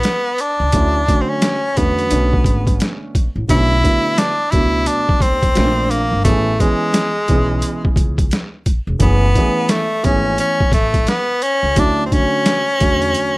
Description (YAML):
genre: hip hop, jazz-hop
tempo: 87 BPM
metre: 4/4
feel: swing 61% on 16ths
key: B dorian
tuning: A4 = 440 Hz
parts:
  - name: edgy tenor saxophone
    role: melody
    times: 0.0-13.4 s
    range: G#3 to E4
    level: -17 LUFS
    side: equal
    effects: none
  - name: boom bap sampler-style drum kit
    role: drums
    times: 0.0-13.3 s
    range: hi-hat, kick drum, snare drum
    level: -17 LUFS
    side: equal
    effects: overdrive
  - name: upright bass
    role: bass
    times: 0.6-13.1 s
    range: E1 to E2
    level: -19 LUFS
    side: equal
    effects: none
  - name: dark baby grand piano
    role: accompaniment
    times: 0.7-13.4 s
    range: B2 to G#4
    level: -20 LUFS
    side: right 2 dB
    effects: none
room: light reverb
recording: lossy compression artefacts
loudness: -14 LUFS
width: side -22 dB against mid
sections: 0.0-3.5 A section; 3.5-13.4 A section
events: none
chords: 0.0 F#sus4 (rootless); 0.7 Dmaj7; 2.1 Bm9; 3.5 Bm7; 5.6 A#maj9; 6.3 Amaj9; 9.0 F#m11 (rootless); 11.8 Dmaj7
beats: 0.04 | 0.73 1.42 2.11 2.80 | 3.49 4.18 4.87 5.56 | 6.25 6.94 7.63 8.32 | 9.01 9.70 10.39 11.08 | 11.77 12.46 13.15